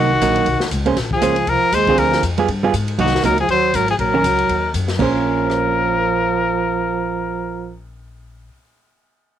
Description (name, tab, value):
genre	jazz, small-group swing and bop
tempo	238 BPM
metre	4/4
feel	swing 57% on 8ths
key	Bb minor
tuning	A4 = 440 Hz
part	clear trumpet	melody	0.0-7.8 s	Gb4 to C5	-18 LUFS	left 4 dB	cassette tape
part	mellow trombone	second line	0.0-7.8 s	Eb3 to Ab3	-22 LUFS	right 8 dB	none
part	hollow-body jazz guitar	accompaniment	0.0-8.5 s	D3 to C5	-19 LUFS	right 6 dB	none
part	upright bass	bass	0.0-8.5 s	Ab1 to Ab2	-24 LUFS	left 2 dB	none
part	open jazz drum kit	drums	0.2-5.6 s	crash cymbal, hi-hat, kick drum, ride cymbal, rim click, snare drum	-26 LUFS	left 2 dB	cassette tape
room	light reverb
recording	home recording on cassette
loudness	-15 LUFS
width	side -10 dB against mid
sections	0.0-3.0 A section; 3.0-5.0 B section; 5.0-7.0 C section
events	none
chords	0.5 Badd9; 1.0 Bbm9; 2.0 Dm7b5; 2.5 G7b9; 3.0 Cm7b5; 4.0 Ebm7; 5.0 Bbm9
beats	0.22 0.47 0.72 | 0.97 1.22 1.48 1.73 | 1.98 2.23 2.48 2.73 | 2.98 3.23 3.49 3.74 | 3.99 4.24 4.50 4.75 | 5.00 5.25 5.50 5.76 | 6.01 6.26 6.51 6.77